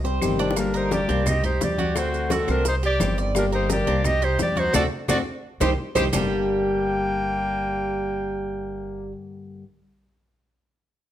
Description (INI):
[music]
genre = latin, Cuban son and guajira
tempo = 172 BPM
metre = 4/4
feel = straight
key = G harmonic minor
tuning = A4 = 440 Hz
[part]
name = fingerpicked plugged-in swing-style acoustic guitar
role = accompaniment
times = 0.0-9.7 s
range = G2 to G4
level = -27 LUFS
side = left 4 dB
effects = none
[part]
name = Cuban tres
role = arpeggios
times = 0.0-9.1 s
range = G3 to D5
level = -28 LUFS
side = right 4 dB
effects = none
[part]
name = upright bass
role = bass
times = 0.0-9.1 s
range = G1 to D2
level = -28 LUFS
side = right 1 dB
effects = none
[part]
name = congas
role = percussion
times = 0.0-6.2 s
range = none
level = -30 LUFS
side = left 2 dB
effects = none
[part]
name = maracas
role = percussion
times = 0.0-6.2 s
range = none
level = -35 LUFS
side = right 9 dB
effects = none
[part]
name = claves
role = percussion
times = 0.2-6.2 s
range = none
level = -37 LUFS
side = left 5 dB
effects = none
[part]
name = bongos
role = percussion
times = 0.4-6.2 s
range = none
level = -33 LUFS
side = left 5 dB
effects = none
[part]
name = warm clarinet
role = melody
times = 0.6-9.1 s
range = A4 to G5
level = -27 LUFS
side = right 1 dB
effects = plate reverb
[part]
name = bright trumpet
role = second line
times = 0.6-9.1 s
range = Bb3 to G4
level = -34 LUFS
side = left 5 dB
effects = none
[sound]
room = moderate large studio reverb, RT60 1.1 s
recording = faint mains hum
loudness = -21 LUFS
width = side -11 dB against mid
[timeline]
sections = 0.6-6.1 A section; 6.1-8.9 B section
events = drum fill 0.0-0.6, 5.3-6.1; band accent 4.7-6.1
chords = 0.0 Cm; 0.6 Gm; 1.3 C5; 2.0 D7; 2.7 Cm; 3.4 Gm; 4.0 C5; 4.7 D7; 5.4 Cm; 6.1 Gm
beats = 0.22 | 0.57 0.92 1.26 1.61 | 1.96 2.31 2.65 3.00 | 3.35 3.70 4.05 4.40 | 4.74 5.09 5.44 5.79 | 6.13 6.48 6.83 7.18 | 7.53 7.87 8.22 8.57